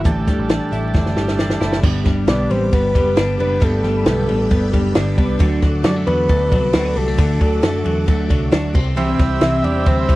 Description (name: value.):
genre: jangly indie pop.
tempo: 135 BPM.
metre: 4/4.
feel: straight.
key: unclear.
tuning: A4 = 440 Hz.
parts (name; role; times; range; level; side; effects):
picked steel-string acoustic guitar; accompaniment; 0.0-10.2 s; G2 to G4; -24 LUFS; right 3 dB; none.
twelve-string electric guitar; arpeggios; 0.0-10.2 s; G2 to E4; -22 LUFS; left 2 dB; none.
vintage muted picked electric bass; bass; 0.0-10.2 s; F#1 to F#2; -21 LUFS; equal; none.
overdriven combo organ; accompaniment; 0.1-1.8, 9.0-10.2 s; C4 to E5; -24 LUFS; right 4 dB; none.
compact cocktail drum kit; drums; 0.1-10.2 s; crash cymbal, hi-hat, kick drum, ride cymbal, snare drum; -17 LUFS; equal; none.
phased string machine; sustained chords; 1.8-10.2 s; C4 to E6; -33 LUFS; right 1 dB; ensemble chorus, phaser.
soft octave-layered synth lead; melody; 2.3-10.2 s; A4 to E5; -21 LUFS; left 1 dB; chorus.
room: little or no reverb.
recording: dry, close 1970s-style studio recording, vinyl crackle, lossy compression artefacts.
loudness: -14 LUFS.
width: side -18 dB against mid.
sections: 0.0-1.8 A section; 1.8-10.2 B section.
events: drum fill 0.9-1.8.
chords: 0.1 A7sus4; 1.8 G; 5.4 D; 8.7 C.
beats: | 0.06 0.50 0.95 1.39 | 1.84 2.28 2.73 3.17 | 3.62 4.06 4.51 4.95 | 5.40 5.84 6.29 6.74 | 7.18 7.63 8.08 8.52 | 8.97 9.42 9.86.